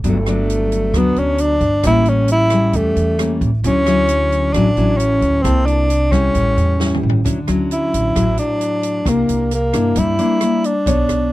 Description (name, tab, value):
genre	bossa nova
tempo	133 BPM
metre	4/4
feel	straight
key	D major from 7.2 s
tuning	A4 = 441 Hz
part	nylon-string guitar	accompaniment	0.0-11.3 s	G2 to C#5	-19 LUFS	left 2 dB	none
part	upright bass	bass	0.0-11.3 s	G1 to G2	-19 LUFS	right 1 dB	none
part	open jazz drum kit	drums	0.0-11.2 s	hi-hat, kick drum, rim click, snare drum, toms	-25 LUFS	right 1 dB	none
part	breathy tenor saxophone	melody	0.1-11.3 s	A3 to E4	-17 LUFS	equal	none
room	little or no reverb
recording	dry, close 1970s-style studio recording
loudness	-14 LUFS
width	side -16 dB against mid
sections	0.0-7.2 A section; 7.2-11.3 B section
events	drum fill 6.8-7.2; tenor saxophone solo 7.2-11.3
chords	0.0 Gmaj7; 1.8 A7b9; 3.6 Dmaj9; 5.4 C13; 6.3 A7; 7.2 Dmaj9; 9.1 C9